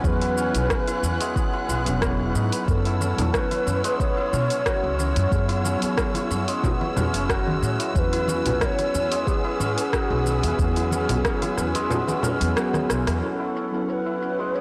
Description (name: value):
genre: organic downtempo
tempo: 91 BPM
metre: 4/4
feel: straight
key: unclear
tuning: A4 = 442 Hz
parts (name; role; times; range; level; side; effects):
- breathy mellow low ney; melody; 0.0-14.6 s; G#4 to D#5; -31 LUFS; equal; digital delay
- muted felt-like synth keys; accompaniment; 0.0-14.6 s; F#3 to A5; -33 LUFS; equal; chorus, sidechain pumping, digital delay
- dark studio string section; sustained chords; 0.0-14.6 s; F#3 to F#6; -35 LUFS; equal; sidechain pumping
- santur; arpeggios; 0.0-14.6 s; G#3 to C#5; -30 LUFS; equal; low-pass filter, digital delay
- upright bass; bass; 0.0-13.2 s; E1 to B2; -28 LUFS; equal; tube saturation
- deep house drum kit; drums; 0.0-14.6 s; hi-hat, rim click, shaker; -32 LUFS; equal; overdrive, low-pass filter on perc, low-pass filter on hats, low-pass filter on snare, low-pass filter on room
- electronic kick drum; drums; 0.0-11.4 s; none; -29 LUFS; equal; overdrive
- congas; percussion; 3.0-12.9 s; none; -32 LUFS; equal; none
room: moderate lush hall reverb, RT60 2.2 s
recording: blown-out, overdriven recording, overdrive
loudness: -23 LUFS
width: mono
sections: 0.0-13.2 A section; 13.2-14.6 B section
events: kick drops out 11.9-13.2; drum fill 12.7-13.2; band accent 13.1-13.4; filter sweep on drum 13.2-14.6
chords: 0.0 Eadd9; 2.7 F#m7; 8.0 Eadd9; 13.2 F#m7